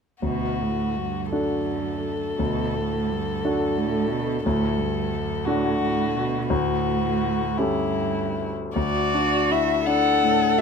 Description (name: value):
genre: classical, slow romantic movement for piano trio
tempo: 49-60 BPM (dotted quarters)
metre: 6/8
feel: rubato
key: D major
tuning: A4 = 439 Hz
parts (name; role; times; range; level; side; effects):
- warm violin; melody; 0.2-10.6 s; E4 to F#5; -26 LUFS; left 8 dB; none
- warm cello; second line; 0.2-10.6 s; F#2 to A4; -27 LUFS; right 8 dB; none
- clear concert grand piano; accompaniment; 0.2-10.6 s; D2 to A4; -25 LUFS; left 1 dB; none
room: light reverb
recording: minimal, uncompressed stereo recording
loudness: -21 LUFS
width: side -6 dB against mid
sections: 0.2-8.8 A section; 8.8-10.6 B section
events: none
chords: 0.2 D; 6.5 A7/D; 8.8 D